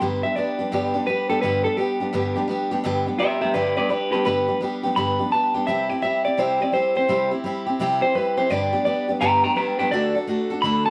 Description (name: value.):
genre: rock.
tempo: 169 BPM.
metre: 4/4.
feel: swing 64% on 8ths.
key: G major.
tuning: A4 = 440 Hz.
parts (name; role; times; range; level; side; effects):
picked steel-string acoustic guitar; accompaniment; 0.0-10.9 s; G2 to A4; -26 LUFS; equal; none.
electric guitar through a small old amp; melody; 0.2-10.9 s; G4 to B5; -24 LUFS; equal; tape echo.
room: moderate spring reverb, RT60 2.1 s.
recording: none.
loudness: -22 LUFS.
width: mono.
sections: 0.0-10.9 A section.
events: clean electric guitar solo 0.0-10.9.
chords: 0.0 G; 5.7 C; 8.5 G; 9.9 D.